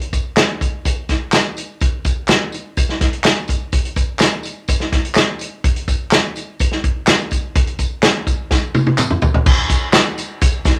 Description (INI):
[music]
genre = soul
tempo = 125 BPM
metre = 4/4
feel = straight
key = none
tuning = none
[part]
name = natural country drum kit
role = drums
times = 0.0-10.8 s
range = crash cymbal, hi-hat, kick drum, snare drum, toms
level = -17 LUFS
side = equal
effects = none
[part]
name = tambourine and handclaps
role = percussion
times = 0.1-10.8 s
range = none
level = -26 LUFS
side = equal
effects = none
[sound]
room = light reverb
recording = none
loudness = -17 LUFS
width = mono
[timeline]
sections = 0.0-9.5 A section; 9.5-10.8 B section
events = drum fill 8.5-9.5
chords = none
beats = 0.37 0.85 1.33 | 1.81 2.29 2.77 3.25 | 3.73 4.21 4.69 5.17 | 5.64 6.12 6.60 7.08 | 7.56 8.04 8.51 8.99 | 9.47 9.94 10.42